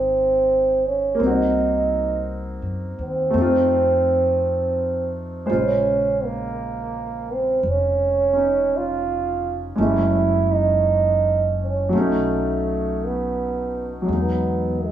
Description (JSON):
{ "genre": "jazz ballad", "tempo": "56 BPM", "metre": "4/4", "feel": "swing 66% on 8ths", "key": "unclear", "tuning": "A4 = 439 Hz", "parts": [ { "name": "trombone with cup mute", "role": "melody", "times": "0.0-14.9 s", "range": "G#3 to F4", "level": "-20 LUFS", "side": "right 3 dB", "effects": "none" }, { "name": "clear upright piano", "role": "accompaniment", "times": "0.0-14.9 s", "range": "B2 to C5", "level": "-24 LUFS", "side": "left 1 dB", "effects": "none" }, { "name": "upright bass", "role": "bass", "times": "0.0-14.9 s", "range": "F1 to Gb2", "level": "-27 LUFS", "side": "left 1 dB", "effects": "none" } ], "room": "moderate large studio reverb, RT60 0.9 s", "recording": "band playing live in one room, small room ambience", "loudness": "-18 LUFS", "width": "side -10 dB against mid", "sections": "0.0-14.9 A section", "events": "none", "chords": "0.0 Dbmaj9; 1.2 Cm7b5; 3.3 F7; 5.5 Bbm9; 9.8 Gbm7; 11.9 Cb9; 14.1 Emaj7" }